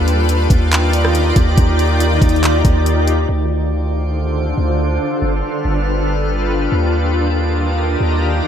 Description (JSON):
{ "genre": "hip hop, atmospheric cloud-rap", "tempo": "140 BPM", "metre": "4/4", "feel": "half-time", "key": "unclear", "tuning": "A4 = 440 Hz", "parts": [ { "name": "shimmering ambient pad", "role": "sustained chords", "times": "0.0-8.5 s", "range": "D3 to D5", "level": "-18 LUFS", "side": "equal", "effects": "chorus, built-in reverb, sidechain pumping, low-pass filter" }, { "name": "long sustained 808-style bass", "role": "bass", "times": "0.0-8.4 s", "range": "G1 to Eb2", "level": "-16 LUFS", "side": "equal", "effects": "none" }, { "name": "drifting glass-harmonics texture", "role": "texture", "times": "0.0-8.5 s", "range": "D4 to F6", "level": "-27 LUFS", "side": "left 2 dB", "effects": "chorus, built-in reverb" }, { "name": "trap drum kit", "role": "drums", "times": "0.1-3.2 s", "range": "handclaps, hi-hat, kick drum, rim click", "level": "-16 LUFS", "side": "equal", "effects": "none" } ], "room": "light reverb", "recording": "none", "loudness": "-13 LUFS", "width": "side -9 dB against mid", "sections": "0.0-3.3 A section; 3.3-8.5 B section", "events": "filter sweep on ambient pad 3.3-8.5", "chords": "0.0 Ebmaj7; 3.3 Dm7; 5.0 G7; 6.7 Ebmaj7", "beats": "0.29 0.72 1.15 | 1.58 2.00 2.43 2.86 | 3.29 3.72 4.15 4.58 | 5.00 5.43 5.86 6.29 | 6.72 7.15 7.58 8.01 | 8.43" }